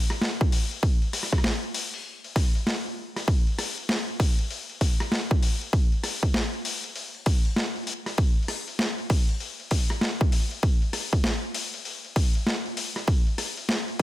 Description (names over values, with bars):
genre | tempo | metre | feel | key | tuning
glitch hop | 98 BPM | 4/4 | swing 62% on 16ths | none | none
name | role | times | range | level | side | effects
boom bap sampler-style drum kit | drums | 0.1-14.0 s | hi-hat, rim click, snare drum | -28 LUFS | left 1 dB | overdrive
electronic kick drum | drums | 0.4-14.0 s | none | -22 LUFS | equal | none
room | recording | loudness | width
little or no reverb | none | -24 LUFS | side -15 dB against mid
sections
0.0-14.0 A section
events
none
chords
none